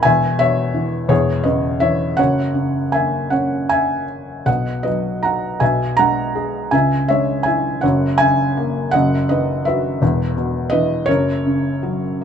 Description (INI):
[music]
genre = classical, lyrical solo piano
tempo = 52-58 BPM (dotted quarters)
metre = 6/8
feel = rubato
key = unclear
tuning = A4 = 439 Hz
[part]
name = felt-muted upright piano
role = solo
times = 0.0-12.2 s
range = E1 to A#5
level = -16 LUFS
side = equal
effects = none
[sound]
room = light reverb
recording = minimal, uncompressed stereo recording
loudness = -16 LUFS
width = side -8 dB against mid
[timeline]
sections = 0.0-12.2 A section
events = none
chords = 0.0 E5; 1.1 C#m/E; 2.2 F#; 4.5 B; 5.6 E/B; 6.7 C#m; 7.8 F#; 8.9 B/F#; 10.0 E5; 11.1 F#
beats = | 0.05 1.10 | 2.19 3.32 | 4.47 5.61 | 6.73 7.83 | 8.94 10.02 | 11.08 12.21